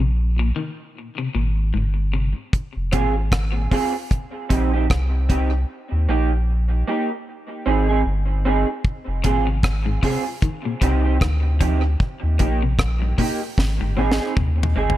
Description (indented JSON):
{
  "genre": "dub reggae",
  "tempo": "76 BPM",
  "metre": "4/4",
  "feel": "swing 58% on 16ths",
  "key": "F dorian",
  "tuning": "A4 = 440 Hz",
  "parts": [
    { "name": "electric guitar at the edge of break-up", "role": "arpeggios", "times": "0.0-3.1, 9.2-14.9 s", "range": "G2 to F3", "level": "-29 LUFS", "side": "left 5 dB", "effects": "harmonic tremolo, tape echo" },
    { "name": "warm sub bass", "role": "bass", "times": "0.0-15.0 s", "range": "F1 to Eb2", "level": "-20 LUFS", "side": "equal", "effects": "none" },
    { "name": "deep reggae drum kit", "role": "drums", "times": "2.5-15.0 s", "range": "hi-hat, kick drum, rim click, snare drum, toms", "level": "-22 LUFS", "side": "equal", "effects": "none" },
    { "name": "electric guitar through a small old amp", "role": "accompaniment", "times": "2.9-15.0 s", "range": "Bb3 to Ab4", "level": "-24 LUFS", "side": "right 4 dB", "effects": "analog chorus, high-pass filter, tape echo" }
  ],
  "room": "studio reverb",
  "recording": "echo-heavy mix",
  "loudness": "-18 LUFS",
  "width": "side -14 dB against mid",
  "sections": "0.0-15.0 A section",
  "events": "break 0.0-2.5; part muted 5.7-8.8; drum fill 13.6-15.0",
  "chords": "0.0 Eb5; 1.0 Ab; 2.5 Fm; 4.1 Cm; 5.7 Eb; 7.3 Ab; 8.8 Fm; 10.4 Cm; 12.0 Eb; 13.6 Ab"
}